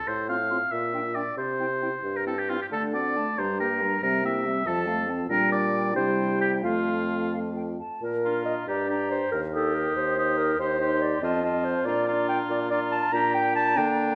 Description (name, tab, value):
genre	quick classical-period movement for wind quintet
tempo	86-96 BPM (dotted quarters)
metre	6/8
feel	rubato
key	F major, Bb major from 8.0 s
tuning	A4 = 440 Hz
part	clear oboe	second line	0.0-14.2 s	D4 to F5	-31 LUFS	equal	none
part	mellow bassoon	bass	0.1-14.2 s	Eb2 to D3	-32 LUFS	equal	none
part	hollow concert flute	melody	0.3-14.2 s	E5 to Eb6	-37 LUFS	equal	none
part	mellow French horn	accompaniment	0.3-14.2 s	F3 to Eb4	-35 LUFS	equal	none
part	mellow clarinet	accompaniment	0.3-14.2 s	C4 to Bb5	-31 LUFS	equal	none
room	wet recital hall reverb, RT60 1.4 s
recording	none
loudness	-26 LUFS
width	mono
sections	0.0-8.0 A section; 8.0-14.2 B section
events	none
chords	0.1 F/A; 0.7 Gm7/Bb (rootless); 1.4 C; 2.7 D7; 3.4 Gm; 4.0 C7; 4.7 F; 5.3 Gm/Bb; 6.0 C; 6.6 F; 8.0 Bb; 8.7 Gm; 9.3 Eb; 10.6 Cm/Eb; 11.2 F7; 11.9 Bb